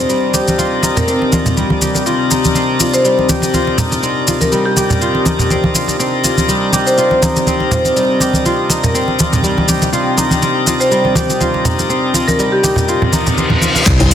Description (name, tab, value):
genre	afro house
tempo	122 BPM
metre	4/4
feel	swing 56% on 16ths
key	C minor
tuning	A4 = 437 Hz
part	marimba with medium hard mallets	melody	0.0-13.2 s	G4 to C5	-19 LUFS	equal	dub echo
part	dark analog pad	sustained chords	0.0-14.1 s	C4 to Bb5	-21 LUFS	left 2 dB	chorus, sidechain pumping
part	kora	arpeggios	0.0-14.1 s	G3 to G4	-19 LUFS	right 1 dB	vintage 12-bit sampler grit, sidechain pumping, dub echo
part	bright tonewheel organ	stabs	0.0-14.1 s	C3 to Bb4	-20 LUFS	left 2 dB	overdrive, slow rotary speaker, sidechain pumping, dub echo
part	deep house drum kit	drums	0.1-14.1 s	crash cymbal, handclaps, hi-hat, shaker	-20 LUFS	left 1 dB	none
part	congas	percussion	0.3-14.1 s	none	-17 LUFS	right 1 dB	none
part	reverse cymbal and impact	sound effects	13.1-14.1 s	none	-18 LUFS	left 2 dB	none
part	smooth synth bass	bass	13.9-14.1 s	C2	-11 LUFS	equal	sidechain pumping
part	electronic kick drum	drums	13.9-14.0 s	none	-14 LUFS	equal	none
part	djembe	percussion	14.0-14.1 s	none	-15 LUFS	left 3 dB	none
room	moderate lush hall reverb, RT60 2.2 s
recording	dense, heavily limited modern master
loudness	-11 LUFS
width	side -9 dB against mid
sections	0.0-13.9 A section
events	reverse cymbal 13.1-13.9; impact 13.9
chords	0.0 Cm7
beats	| 0.09 0.58 1.08 1.57 | 2.06 2.55 3.04 3.54 | 4.03 4.52 5.01 5.50 | 5.99 6.49 6.98 7.47 | 7.96 8.45 8.95 9.44 | 9.93 10.42 10.91 11.40 | 11.90 12.39 12.88 13.37 | 13.86